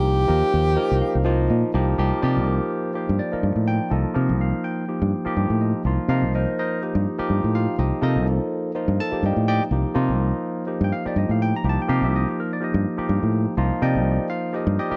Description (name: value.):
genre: electric jazz fusion.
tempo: 124 BPM.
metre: 4/4.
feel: swing 55% on 16ths.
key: C dorian.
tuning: A4 = 441 Hz.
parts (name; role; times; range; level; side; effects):
clear alto saxophone; melody; 0.0-1.5 s; G4; -24 LUFS; equal; slapback echo.
barky tine electric piano; accompaniment; 0.0-15.0 s; F3 to Bb5; -26 LUFS; equal; phaser.
fingered electric bass; bass; 0.0-14.9 s; C2 to C3; -23 LUFS; equal; none.
room: small room ambience.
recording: dry, close 1970s-style studio recording.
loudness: -22 LUFS.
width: mono.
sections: 0.0-2.0 A section; 2.0-15.0 B section.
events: tine electric piano fill 0.5-2.0, 5.1-5.8.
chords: 0.0 Cm7; 2.0 Cm9.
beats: | 0.04 0.53 1.01 1.50 | 1.98 2.46 2.95 3.43 | 3.92 4.40 4.88 5.37 | 5.85 6.33 6.82 7.30 | 7.78 8.27 8.75 9.23 | 9.71 10.20 10.68 11.16 | 11.65 12.13 12.61 13.09 | 13.58 14.06 14.54.